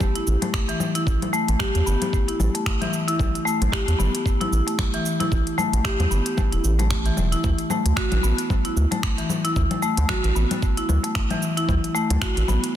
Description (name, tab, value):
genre	organic downtempo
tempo	113 BPM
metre	4/4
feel	swing 57% on 16ths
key	unclear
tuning	A4 = 439 Hz
part	electronic kick drum	drums	0.0-12.3 s	none	-25 LUFS	equal	overdrive, small room ambience
part	organic electronic drum kit	drums	0.0-12.7 s	cabasa, congas, finger snaps, hi-hat	-27 LUFS	left 3 dB	small room ambience, soft clipping on snare
part	marimba with medium mallets	arpeggios	0.2-12.6 s	E3 to G4	-24 LUFS	left 1 dB	ping-pong delay
part	round analog bass	bass	0.3-12.6 s	E1 to E2	-21 LUFS	equal	sidechain pumping
room	light reverb, digital ambience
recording	dense, heavily limited modern master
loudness	-20 LUFS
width	side -11 dB against mid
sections	0.0-12.8 A section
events	none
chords	0.0 A5; 7.4 Dadd9